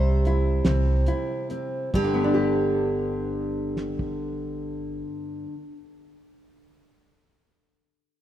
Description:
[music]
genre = acoustic folk duo or small band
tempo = 44 BPM (dotted quarters)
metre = 6/8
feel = straight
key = G major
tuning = A4 = 445 Hz
[part]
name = picked acoustic archtop guitar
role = melody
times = 0.0-5.0 s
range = G4 to C5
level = -33 LUFS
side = right 3 dB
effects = slapback echo
[part]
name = nylon-string guitar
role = accompaniment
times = 0.0-5.8 s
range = G2 to G4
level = -26 LUFS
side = left 1 dB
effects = none
[part]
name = upright bass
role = bass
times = 0.0-5.0 s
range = G1 to C2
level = -26 LUFS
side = equal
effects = none
[part]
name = cloth-damped thuddy drum kit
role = drums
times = 0.3-4.2 s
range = crash cymbal, hi-hat, kick drum, snare drum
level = -28 LUFS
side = right 1 dB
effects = none
[sound]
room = light reverb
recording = rough home demo mix, small room ambience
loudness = -23 LUFS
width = side -12 dB against mid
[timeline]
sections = 0.0-1.9 A section; 1.9-7.4 B section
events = slowing down 0.0-1.9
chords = 0.0 C; 1.9 G

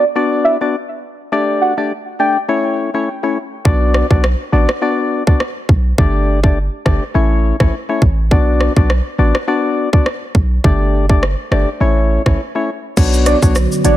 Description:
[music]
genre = dancehall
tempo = 103 BPM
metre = 4/4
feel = swing 56% on 16ths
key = B minor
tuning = A4 = 440 Hz
[part]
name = warm velvety synth lead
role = melody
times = 0.0-2.4, 13.3-14.0 s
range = D5 to G5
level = -17 LUFS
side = right 2 dB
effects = chorus, tremolo, tape echo
[part]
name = percussive organ stab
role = accompaniment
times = 0.0-14.0 s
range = A3 to D5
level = -17 LUFS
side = left 3 dB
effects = chorus, sidechain pumping
[part]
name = warm 808-style bass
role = bass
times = 3.7-14.0 s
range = G1 to B1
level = -14 LUFS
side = right 1 dB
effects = none
[part]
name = island pop drum kit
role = drums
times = 3.7-14.0 s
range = crash cymbal, hi-hat, kick drum, rim click, shaker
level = -15 LUFS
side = equal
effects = none
[part]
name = deep dark ambient pad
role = sustained chords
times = 13.2-14.0 s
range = D3 to C#5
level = -19 LUFS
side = right 2 dB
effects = chorus, built-in reverb, sidechain pumping
[sound]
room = digital ambience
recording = none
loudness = -12 LUFS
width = side -14 dB against mid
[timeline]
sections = 0.0-13.0 A section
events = break 12.4-13.0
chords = 0.0 Bm; 1.3 Gsus2; 2.5 A; 3.7 Bm; 6.0 Gsus2; 7.1 A; 8.3 Bm; 10.6 Gsus2; 11.8 A; 13.0 Bmadd9

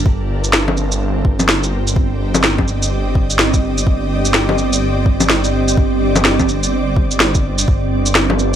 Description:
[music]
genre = future garage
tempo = 126 BPM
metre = 4/4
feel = swing 62% on 16ths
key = unclear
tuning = A4 = 437 Hz
[part]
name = ethereal airy pad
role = sustained chords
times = 0.0-8.6 s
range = G3 to Eb5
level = -20 LUFS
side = right 2 dB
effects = ensemble chorus, built-in reverb, sidechain pumping
[part]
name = swelling detuned saw bass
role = bass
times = 0.0-8.6 s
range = G1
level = -19 LUFS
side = equal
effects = sidechain pumping
[part]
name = electronic kick drum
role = drums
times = 0.1-7.8 s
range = none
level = -15 LUFS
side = equal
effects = none
[part]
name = electronic shaker, snare drum and bongos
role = drums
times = 0.4-8.5 s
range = none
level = -15 LUFS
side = equal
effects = none
[sound]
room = light reverb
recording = none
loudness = -13 LUFS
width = side -9 dB against mid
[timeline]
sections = 0.0-8.6 A section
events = none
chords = 0.1 Cm7/G; 7.7 Gm

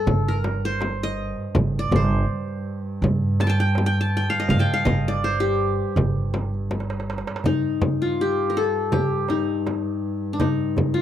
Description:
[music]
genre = Turkish makam ensemble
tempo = 81 BPM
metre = 4/4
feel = straight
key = G makam ussak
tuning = A4 = 441 Hz
[part]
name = qanun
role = melody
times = 0.0-11.0 s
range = D4 to A5-30c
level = -24 LUFS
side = left 2 dB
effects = none
[part]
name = rich double bass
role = drone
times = 0.0-11.0 s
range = G2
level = -30 LUFS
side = right 2 dB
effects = none
[part]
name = upright bass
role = bass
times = 0.1-7.2 s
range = G1 to G2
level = -24 LUFS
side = equal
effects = none
[part]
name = darbuka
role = percussion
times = 0.1-11.0 s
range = none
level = -27 LUFS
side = right 3 dB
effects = none
[part]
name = frame drum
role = percussion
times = 0.1-10.9 s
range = none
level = -26 LUFS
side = left 2 dB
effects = none
[sound]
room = little or no reverb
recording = dry, close 1970s-style studio recording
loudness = -20 LUFS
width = side -10 dB against mid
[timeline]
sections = 0.0-7.5 A section; 7.5-11.0 B section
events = drum fill 6.7-7.5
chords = none

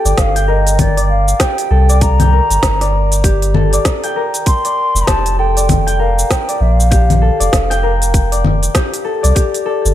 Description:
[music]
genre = organic downtempo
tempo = 98 BPM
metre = 4/4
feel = swing 60% on 16ths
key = G minor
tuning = A4 = 440 Hz
[part]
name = mellow bansuri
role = melody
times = 0.0-8.4 s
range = D5 to C6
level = -19 LUFS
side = equal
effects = tape echo
[part]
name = concert harp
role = arpeggios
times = 0.0-9.9 s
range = G4 to G5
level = -18 LUFS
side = left 3 dB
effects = low-pass filter, ping-pong delay
[part]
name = warm sub bass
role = bass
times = 0.1-9.9 s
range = F1 to C2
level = -14 LUFS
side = equal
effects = sidechain pumping
[part]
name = organic electronic drum kit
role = drums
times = 0.1-9.9 s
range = cabasa, congas, hi-hat, snare drum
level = -18 LUFS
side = left 2 dB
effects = none
[part]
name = electronic kick drum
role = drums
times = 0.2-9.5 s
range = none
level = -15 LUFS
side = equal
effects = none
[sound]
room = light reverb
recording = none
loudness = -11 LUFS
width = side -12 dB against mid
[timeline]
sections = 0.0-9.9 A section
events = none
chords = 0.0 Gm; 4.5 Fsus4; 9.4 G5

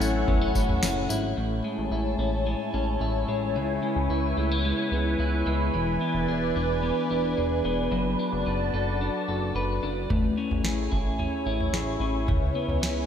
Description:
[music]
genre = dream pop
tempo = 110 BPM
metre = 4/4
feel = straight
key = A major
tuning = A4 = 438 Hz
[part]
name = clean lap steel guitar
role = melody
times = 0.0-1.1 s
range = C#4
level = -35 LUFS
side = left 2 dB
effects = tape echo
[part]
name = phased analog pad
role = sustained chords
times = 0.0-13.1 s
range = A3 to A5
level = -29 LUFS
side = equal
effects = phaser, chorus
[part]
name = electric guitar at the edge of break-up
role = arpeggios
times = 0.0-13.1 s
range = A2 to B4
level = -29 LUFS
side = left 2 dB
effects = analog chorus, tape echo
[part]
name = chorused synth bass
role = bass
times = 0.0-13.1 s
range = E1 to C#2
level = -29 LUFS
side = equal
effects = none
[part]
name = booming analog drum machine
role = drums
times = 0.0-1.2, 10.1-13.0 s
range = kick drum, snare drum, tambourine, toms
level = -28 LUFS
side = right 1 dB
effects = none
[sound]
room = moderate lush hall reverb, RT60 2.1 s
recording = dreamy mix soaked in reverb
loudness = -24 LUFS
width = side -8 dB against mid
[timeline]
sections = 0.0-1.4 A section; 1.4-13.1 B section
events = none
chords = 0.0 A6; 1.4 Amaj7; 3.6 C#m7; 5.7 E7; 7.9 D6/F#; 10.1 Amaj7; 12.3 C#m7

